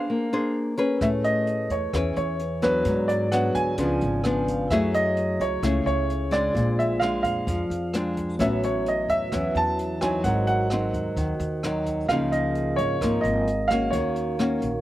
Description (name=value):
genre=bossa nova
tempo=130 BPM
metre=4/4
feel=straight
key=unclear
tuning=A4 = 440 Hz
part: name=warm baby grand piano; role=melody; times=0.0-14.8 s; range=B4 to A5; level=-26 LUFS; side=right 1 dB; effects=none
part: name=nylon-string guitar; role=accompaniment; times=0.0-14.8 s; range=Ab2 to C5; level=-25 LUFS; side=left 1 dB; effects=none
part: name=vibraphone with medium mallets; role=accompaniment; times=1.0-14.8 s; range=E4 to Ab5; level=-31 LUFS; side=right 2 dB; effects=none
part: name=upright bass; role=bass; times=1.0-14.8 s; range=Ab1 to D3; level=-30 LUFS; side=equal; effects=none
part: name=jazz brush drum kit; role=drums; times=1.0-14.7 s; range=hi-hat, kick drum, rim click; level=-35 LUFS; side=equal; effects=none
room=little or no reverb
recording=recorded outdoors, with no room sound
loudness=-22 LUFS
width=side -14 dB against mid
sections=0.0-14.8 A section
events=vibraphone fill 4.0-4.7, 11.4-12.1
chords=0.1 Bb9; 1.0 Amaj9; 2.9 Abm7b5; 3.8 Db7b9; 4.7 Gbm9; 6.6 Bb9; 8.4 A69; 10.2 Ab7; 12.1 Db69; 13.9 Ebm7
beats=0.10 0.56 | 1.02 1.48 1.94 2.40 | 2.87 3.33 3.79 4.25 | 4.71 5.17 5.63 6.09 | 6.55 7.01 7.47 7.93 | 8.40 8.86 9.32 9.78 | 10.24 10.70 11.16 11.62 | 12.09 12.55 13.01 13.47 | 13.93 14.39